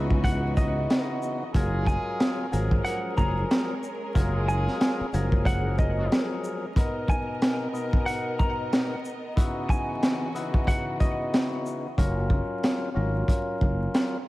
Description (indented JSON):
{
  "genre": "hip hop, boom-bap hip-hop",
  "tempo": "92 BPM",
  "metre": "4/4",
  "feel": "swing 60% on 16ths",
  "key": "F# major",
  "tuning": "A4 = 442 Hz",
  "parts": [
    { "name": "semi-hollow electric guitar", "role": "melody", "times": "0.0-11.5 s", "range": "D#5 to A#5", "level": "-34 LUFS", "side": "equal", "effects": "high-pass filter, low-pass filter, tape echo" },
    { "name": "percussive tonewheel organ", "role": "accompaniment", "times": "0.0-14.2 s", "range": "B2 to A#4", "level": "-31 LUFS", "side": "left 2 dB", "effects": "overdrive, high-pass filter, low-pass filter" },
    { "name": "clear studio string section", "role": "sustained chords", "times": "0.0-12.0 s", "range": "C#3 to D#5", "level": "-38 LUFS", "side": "right 1 dB", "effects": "high-pass filter, low-pass filter" },
    { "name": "sustaining fretless electric bass", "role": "bass", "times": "0.0-6.1, 12.0-13.9 s", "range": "F#1 to C#2", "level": "-26 LUFS", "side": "equal", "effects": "ensemble chorus" },
    { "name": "crunchy breakbeat drum kit", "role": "drums", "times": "0.1-14.1 s", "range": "hi-hat, kick drum, shaker, snare drum", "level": "-26 LUFS", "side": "equal", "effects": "none" },
    { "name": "mellow trumpet section", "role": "stabs", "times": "1.5-6.1 s", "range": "F#3 to A#4", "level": "-38 LUFS", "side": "right 2 dB", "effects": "high-pass filter, low-pass filter, tape echo" }
  ],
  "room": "light reverb, studio reverb",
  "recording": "vinyl crackle",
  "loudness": "-23 LUFS",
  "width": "side -18 dB against mid",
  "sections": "0.0-12.0 A section; 12.0-14.3 B section",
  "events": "none",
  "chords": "0.0 C#m11; 1.5 F#maj9; 6.8 Bmaj7; 9.4 C#m11; 12.0 F#maj7"
}